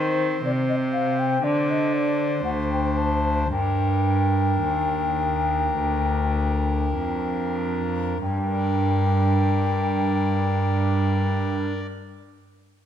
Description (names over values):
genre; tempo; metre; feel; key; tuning
classical, baroque-style sonata movement with continuo; 47-63 BPM; 4/4; straight; G minor; A4 = 440 Hz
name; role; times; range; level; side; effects
mellow baroque flute; melody; 0.0-11.6 s; C5 to A5; -27 LUFS; left 5 dB; none
pipe organ, foundations; accompaniment; 0.0-11.9 s; D2 to D5; -25 LUFS; equal; none
rich cello; bass; 0.0-11.6 s; D2 to Eb3; -24 LUFS; right 2 dB; none
room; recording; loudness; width
moderate scoring stage reverb, RT60 1.7 s; none; -21 LUFS; side -9 dB against mid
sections
0.0-8.2 A section; 8.2-12.9 B section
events
slowing down 0.0-8.2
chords
0.0 Cm/Eb; 1.4 D7(no3); 3.5 Gm